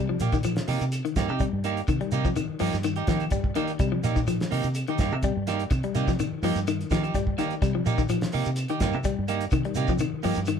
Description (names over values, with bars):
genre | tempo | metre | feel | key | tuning
afrobeat | 126 BPM | 4/4 | straight | C minor | A4 = 440 Hz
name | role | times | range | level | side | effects
clean electric guitar | arpeggios | 0.0-10.6 s | Eb3 to G3 | -29 LUFS | left 7 dB | spring reverb
deep dub fingered electric bass | bass | 0.0-10.6 s | G2 to Eb3 | -29 LUFS | equal | none
electric guitar at the edge of break-up | stabs | 0.2-10.4 s | Bb3 to G4 | -30 LUFS | right 9 dB | none
cloth-damped thuddy drum kit | drums | 0.2-10.6 s | hi-hat, kick drum, snare drum | -30 LUFS | equal | none
shekere | percussion | 0.2-10.6 s | none | -36 LUFS | right 4 dB | none
claves | percussion | 0.5-10.6 s | none | -42 LUFS | right 1 dB | none
room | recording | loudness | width
moderate small room reverb, RT60 0.5 s | band playing live in one room | -24 LUFS | side -7 dB against mid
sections
0.0-10.6 A section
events
none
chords
0.0 Cm7